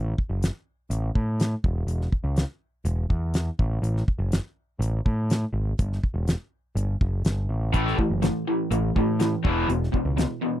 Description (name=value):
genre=classic rock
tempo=123 BPM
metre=4/4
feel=straight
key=unclear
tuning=A4 = 440 Hz
part: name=growling picked electric bass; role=bass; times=0.0-10.2 s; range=E1 to A2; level=-25 LUFS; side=equal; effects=overdrive
part: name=damped 70s drum kit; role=drums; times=0.2-10.3 s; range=hi-hat, kick drum, snare drum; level=-24 LUFS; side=equal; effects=none
part: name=raw garage guitar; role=riff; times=7.7-10.6 s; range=E2 to A3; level=-24 LUFS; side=equal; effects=overdrive
room=little or no reverb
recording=dry, close 1970s-style studio recording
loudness=-23 LUFS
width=side -12 dB against mid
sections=0.0-10.6 A section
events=none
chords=0.0 N.C.; 5.8 Emadd9; 7.7 A5; 9.4 E5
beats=0.42 0.91 1.39 | 1.88 2.37 2.85 3.34 | 3.83 4.32 4.81 5.29 | 5.78 6.27 6.76 7.24 | 7.73 8.22 8.71 9.19 | 9.68 10.17